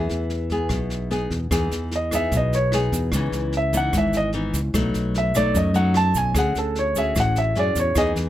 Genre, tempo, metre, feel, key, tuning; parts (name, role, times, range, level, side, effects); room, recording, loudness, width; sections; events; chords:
bossa nova; 149 BPM; 4/4; straight; E major; A4 = 440 Hz
warm grand piano; melody; 0.0-8.1 s; A4 to A5; -23 LUFS; right 1 dB
nylon-string guitar; accompaniment; 0.0-8.3 s; F#2 to G#4; -24 LUFS; left 2 dB
fingered electric bass; bass; 0.0-8.3 s; G#1 to F#2; -25 LUFS; equal
jazz brush drum kit; drums; 0.1-8.2 s; kick drum, rim click, snare drum; -29 LUFS; equal
egg shaker; percussion; 1.5-8.3 s; -34 LUFS; right 9 dB
little or no reverb; close, detailed microphones; -19 LUFS; side -12 dB against mid
0.0-1.5 A section; 1.5-8.3 B section
grand piano solo 1.5-8.3
0.0 Emaj7; 3.1 C#m9; 4.7 B7; 6.4 Dmaj9#11